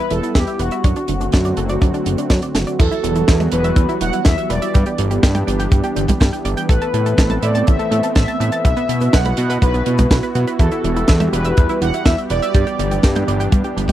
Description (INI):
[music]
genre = italo disco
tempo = 123 BPM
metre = 4/4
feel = straight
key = E minor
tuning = A4 = 440 Hz
[part]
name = analog synth brass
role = melody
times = 0.0-13.0 s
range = F#4 to F#5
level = -23 LUFS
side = equal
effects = chorus, tape echo
[part]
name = warm analog pad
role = sustained chords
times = 0.0-13.9 s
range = D3 to A4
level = -23 LUFS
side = right 1 dB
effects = chorus
[part]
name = analog pluck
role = arpeggios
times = 0.0-13.9 s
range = B2 to A5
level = -25 LUFS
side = right 4 dB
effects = chorus, tape echo
[part]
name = fat analog bass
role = bass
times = 0.1-13.9 s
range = E1 to B2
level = -20 LUFS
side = equal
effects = none
[part]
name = tight funk drum kit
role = drums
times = 0.1-13.9 s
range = cabasa, crash cymbal, hi-hat, snare drum, toms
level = -22 LUFS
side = right 1 dB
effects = none
[part]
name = kick drum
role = drums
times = 0.4-13.9 s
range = none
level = -15 LUFS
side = equal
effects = none
[sound]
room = little or no reverb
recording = dry, close 1970s-style studio recording, lossy compression artefacts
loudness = -14 LUFS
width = side -12 dB against mid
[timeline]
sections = 0.0-2.8 A section; 2.8-13.9 B section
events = drum fill 2.5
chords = 0.0 Em; 0.8 D7/F#; 2.8 Emadd9; 4.7 G6; 6.7 Amadd9; 8.6 Bsus4; 10.6 Emadd9; 12.5 G6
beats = 0.35 | 0.84 1.33 1.82 2.31 | 2.79 3.28 3.77 4.26 | 4.74 5.23 5.72 6.21 | 6.70 7.18 7.67 8.16 | 8.65 9.13 9.62 10.11 | 10.60 11.09 11.57 12.06 | 12.55 13.04 13.52